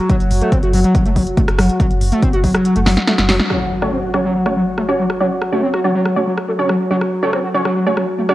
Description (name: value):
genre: driving peak-time techno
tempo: 141 BPM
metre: 4/4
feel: straight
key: F# minor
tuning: A4 = 440 Hz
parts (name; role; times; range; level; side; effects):
- analog drone; drone; 0.0-8.3 s; F#3 to F#4; -22 LUFS; left 1 dB; chorus, sidechain pumping
- overdriven synth lead; riff; 0.1-8.2 s; F#3 to F#4; -18 LUFS; equal; distortion, analog chorus, sidechain pumping, analog delay
- electronic kick drum; drums; 0.1-2.5 s; none; -16 LUFS; equal; none
- techno drum kit; drums; 0.1-8.3 s; hi-hat, rim click, snare drum; -20 LUFS; equal; sidechain pumping on hats
- saturated sub bass; bass; 0.2-3.4 s; F#1; -17 LUFS; equal; tube saturation, sidechain pumping, low-pass filter
- rave stab; stabs; 3.5-8.3 s; C#4 to C#5; -19 LUFS; right 2 dB; chorus, built-in reverb, sidechain pumping, tape echo
- impact; sound effects; 3.5-5.2 s; none; -29 LUFS; equal; none
room: light reverb, digital ambience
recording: home recording on cassette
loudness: -14 LUFS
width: side -16 dB against mid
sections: 0.0-3.5 A section; 3.5-8.3 B section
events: kick drops out 2.6-3.5; drum fill 2.9-3.5; band accent 3.4; impact 3.5-5.2; filter sweep on analog synth lead 3.5-8.3; filter sweep on synth stab 3.5-8.3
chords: 0.0 N.C.; 3.5 F#5